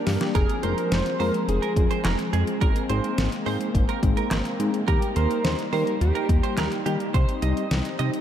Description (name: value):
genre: synth-pop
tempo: 106 BPM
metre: 4/4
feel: straight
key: unclear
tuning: A4 = 442 Hz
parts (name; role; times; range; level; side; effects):
- brassy analog pad; sustained chords; 0.0-8.2 s; F3 to Eb4; -30 LUFS; left 1 dB; chorus
- mellow tine electric piano; accompaniment; 0.1-8.2 s; G3 to Ab4; -30 LUFS; left 2 dB; medium stereo tremolo
- chorused synth bass; bass; 0.1-8.1 s; F1 to Eb3; -25 LUFS; equal; none
- pop drum kit; drums; 0.1-8.2 s; handclaps, hi-hat, kick drum, snare drum; -26 LUFS; equal; none
- direct-recorded clean electric guitar; second line; 0.3-8.1 s; G4 to Eb5; -31 LUFS; right 7 dB; lush chorus, analog delay
- wide unison lead; melody; 0.4-6.8 s; G4 to C5; -30 LUFS; right 1 dB; analog delay
room: moderate cathedral reverb, RT60 4.9 s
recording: dreamy mix soaked in reverb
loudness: -21 LUFS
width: side -10 dB against mid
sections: 0.4-8.2 A section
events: drum fill 0.0-0.4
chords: 0.4 Fm; 2.6 Abadd9; 4.9 Eb; 7.1 Cm